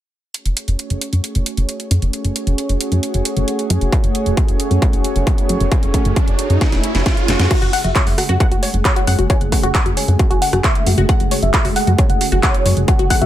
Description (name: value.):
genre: uplifting trance.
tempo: 134 BPM.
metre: 4/4.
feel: straight.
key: F# minor.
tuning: A4 = 442 Hz.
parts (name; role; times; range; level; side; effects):
lush unison pad; sustained chords; 0.3-13.3 s; C#3 to C#5; -23 LUFS; right 1 dB; chorus, sidechain pumping.
techno drum kit; drums; 0.3-13.3 s; crash cymbal, handclaps, hi-hat, rim click, snare drum; -22 LUFS; right 1 dB; overdrive.
plucky analog bass; bass; 0.5-13.3 s; E1 to F#2; -17 LUFS; equal; sidechain pumping.
electronic kick drum; drums; 3.9-13.2 s; none; -16 LUFS; equal; distortion, overdrive.
riser; sound effects; 5.0-7.5 s; none; -25 LUFS; right 3 dB; none.
supersaw stab; melody; 7.5-13.3 s; C#5 to G#5; -25 LUFS; right 2 dB; sidechain pumping, low-pass filter, dub echo.
wide unison pluck; arpeggios; 7.5-13.3 s; F#4 to F#5; -22 LUFS; moving between left 6 dB and right 1 dB; auto-pan, sidechain pumping, digital delay.
room: little or no reverb.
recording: none.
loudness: -14 LUFS.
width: side -12 dB against mid.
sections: 0.3-7.5 A section; 7.5-13.3 B section.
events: filter sweep on analog synth bass 0.3-7.5; filter sweep on analog synth pad 0.3-7.5; riser 5.0-7.5; drum fill 6.6-7.5.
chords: 0.3 F#madd9.